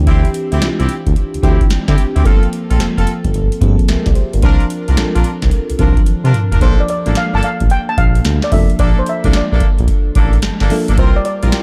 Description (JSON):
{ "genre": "R&B, new jack swing", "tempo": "110 BPM", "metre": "4/4", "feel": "swing 65% on 16ths", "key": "unclear", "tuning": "A4 = 440 Hz", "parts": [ { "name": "FM electric piano with soft pad layer", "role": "accompaniment", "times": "0.0-11.6 s", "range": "E3 to A5", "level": "-23 LUFS", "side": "equal", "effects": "chorus" }, { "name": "smooth synth bass", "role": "bass", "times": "0.0-11.5 s", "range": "F1 to D3", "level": "-17 LUFS", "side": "equal", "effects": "none" }, { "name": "clear horn section", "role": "stabs", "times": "0.1-11.6 s", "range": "Bb3 to Bb4", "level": "-27 LUFS", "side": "equal", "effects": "none" }, { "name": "booming analog drum machine", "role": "drums", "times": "0.1-11.6 s", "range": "hi-hat, kick drum, snare drum, toms", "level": "-17 LUFS", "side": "equal", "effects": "none" }, { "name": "steel pan", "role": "melody", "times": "6.6-11.6 s", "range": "C5 to A5", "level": "-22 LUFS", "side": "equal", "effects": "none" } ], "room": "little or no reverb", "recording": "dark, warm production", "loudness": "-14 LUFS", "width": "mono", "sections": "0.0-6.6 A section; 6.6-11.6 B section", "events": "drum fill 6.1-6.6; FM electric piano fill 10.2-11.0", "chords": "0.0 D9sus4; 2.2 Gm11; 4.4 C9sus4; 6.6 Bbmaj7; 11.0 C7sus4" }